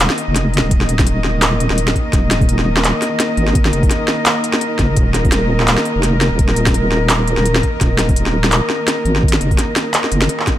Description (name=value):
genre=half-time drum and bass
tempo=169 BPM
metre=4/4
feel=swing 57% on 16ths, half-time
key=unclear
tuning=A4 = 440 Hz
part: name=warm chamber cello section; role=sustained chords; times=0.0-10.6 s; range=Eb3 to Eb5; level=-20 LUFS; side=equal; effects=vintage 12-bit sampler grit, sidechain pumping
part: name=deep soft wobble bass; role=bass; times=0.0-10.3 s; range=Eb1 to Ab1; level=-16 LUFS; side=equal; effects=chorus
part: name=organic electronic drum kit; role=drums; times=0.0-10.6 s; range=handclaps, hi-hat, snare drum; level=-18 LUFS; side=equal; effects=none
part: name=electronic kick drum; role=drums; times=0.7-10.6 s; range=none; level=-16 LUFS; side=equal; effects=none
room=light reverb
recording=none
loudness=-13 LUFS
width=side -12 dB against mid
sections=0.0-10.6 A section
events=none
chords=0.0 Eb5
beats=0.00 0.35 | 0.71 1.06 1.42 1.77 | 2.13 2.48 2.84 3.19 | 3.55 3.90 4.26 4.62 | 4.97 5.33 5.68 6.04 | 6.39 6.75 7.10 7.46 | 7.81 8.17 8.52 8.88 | 9.23 9.59 9.94 10.30